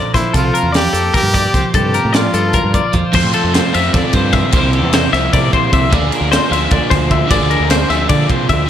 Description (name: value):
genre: math rock and midwest emo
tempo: 302 BPM (eighths)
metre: 7/8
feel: straight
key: unclear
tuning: A4 = 440 Hz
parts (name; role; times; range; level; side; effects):
- twelve-string electric guitar; accompaniment; 0.0-8.7 s; F2 to C5; -21 LUFS; right 4 dB; lush chorus
- twelve-string electric guitar; arpeggios; 0.0-8.7 s; A4 to E5; -17 LUFS; left 6 dB; slapback echo
- bright trumpet; melody; 0.1-2.9 s; E4 to G4; -18 LUFS; equal; slapback echo
- growling fingered electric bass; bass; 0.1-8.7 s; Ab1 to D3; -18 LUFS; equal; overdrive
- crisp fusion drum kit; drums; 0.1-8.6 s; crash cymbal, hi-hat, kick drum, ride cymbal, snare drum; -17 LUFS; equal; none
- overdriven electric guitar; riff; 3.1-8.7 s; F2 to Ab4; -19 LUFS; right 2 dB; slapback echo
room: moderate lush hall reverb, RT60 2.0 s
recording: big arena sound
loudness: -11 LUFS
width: side -10 dB against mid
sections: 0.0-3.1 A section; 3.1-8.7 B section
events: none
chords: 0.3 C7sus4; 3.1 Fmaj7; 4.5 C7sus4; 5.9 Bb7/D